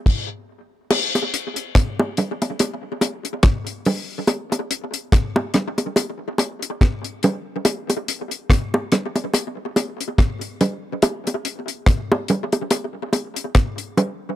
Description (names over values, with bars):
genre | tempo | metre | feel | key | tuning
reggae | 71 BPM | 4/4 | swing 57% on 16ths | none | none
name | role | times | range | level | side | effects
deep reggae drum kit | drums | 0.1-14.2 s | crash cymbal, hi-hat, kick drum, rim click | -19 LUFS | equal | none
bongos | percussion | 0.9-14.2 s | none | -21 LUFS | right 1 dB | tape echo
room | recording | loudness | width
small room ambience | dry, close 1970s-style studio recording | -19 LUFS | side -13 dB against mid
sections
0.9-14.4 A section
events
stop 0.1-0.9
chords
none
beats
0.06 | 0.90 1.75 2.59 3.44 | 4.28 5.12 5.97 6.81 | 7.65 8.50 9.34 10.18 | 11.02 11.87 12.71 13.55